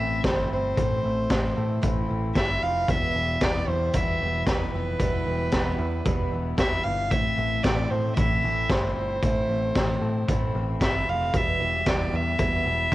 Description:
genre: jangly indie pop.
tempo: 114 BPM.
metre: 4/4.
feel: straight.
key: A minor.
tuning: A4 = 439 Hz.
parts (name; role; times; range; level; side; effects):
warm violin; melody; 0.0-12.9 s; B4 to F5; -27 LUFS; right 1 dB; plate reverb.
picked steel-string acoustic guitar; accompaniment; 0.0-12.9 s; E2 to E4; -33 LUFS; right 6 dB; cassette tape, plate reverb.
electric guitar through a small old amp; arpeggios; 0.0-12.9 s; E2 to E4; -33 LUFS; left 6 dB; spring reverb, cassette tape, plate reverb.
deep dub picked electric bass; bass; 0.0-12.9 s; E1 to A2; -29 LUFS; equal; none.
raw garage drum kit; drums; 0.2-12.9 s; hi-hat, kick drum, snare drum; -27 LUFS; equal; cassette tape.
room: light reverb.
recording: home recording on cassette.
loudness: -22 LUFS.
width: side -16 dB against mid.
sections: 0.0-12.9 A section.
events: none.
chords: 0.0 Am; 2.9 Em; 7.1 Am; 11.3 Em.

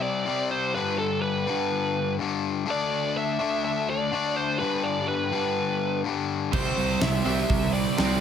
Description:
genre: hard rock.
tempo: 125 BPM.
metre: 4/4.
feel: straight.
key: unclear.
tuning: A4 = 437 Hz.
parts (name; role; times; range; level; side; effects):
biting lead guitar; melody; 0.0-8.2 s; A4 to E5; -28 LUFS; right 3 dB; overdrive.
overdriven semi-hollow guitar; riff; 0.0-8.2 s; G2 to D4; -27 LUFS; left 8 dB; none.
overdriven semi-hollow guitar; riff; 6.5-8.2 s; C3 to C4; -28 LUFS; right 15 dB; none.
tight distorted guitar; riff; 6.5-8.2 s; C3 to C4; -34 LUFS; right 2 dB; none.
fuzz picked electric bass; bass; 6.5-8.2 s; C2; -29 LUFS; right 2 dB; overdrive.
huge arena drum kit; drums; 6.5-8.1 s; crash cymbal, hi-hat, kick drum, snare drum; -27 LUFS; equal; none.
room: light reverb.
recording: none.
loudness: -23 LUFS.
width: side -8 dB against mid.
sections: 0.0-8.2 A section.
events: none.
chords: 0.0 C5; 0.8 G; 2.7 D5; 4.6 G; 6.5 C.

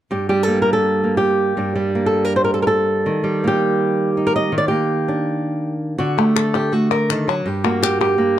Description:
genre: flamenco.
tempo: free time.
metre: none.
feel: none.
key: G harmonic minor.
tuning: A4 = 440 Hz.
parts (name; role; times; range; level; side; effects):
flamenco guitar; melody; 0.1-8.4 s; G2 to Eb5; -16 LUFS; right 1 dB; none.
palmas hand claps; percussion; 6.2-8.2 s; none; -23 LUFS; left 15 dB; none.
room: small room reverb.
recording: dry, close 1970s-style studio recording.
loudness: -16 LUFS.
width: side -12 dB against mid.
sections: 0.1-6.0 A section; 6.0-8.4 B section.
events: none.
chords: 0.1 Gmadd9; 3.1 Ebmaj7; 6.0 D; 7.5 Gm.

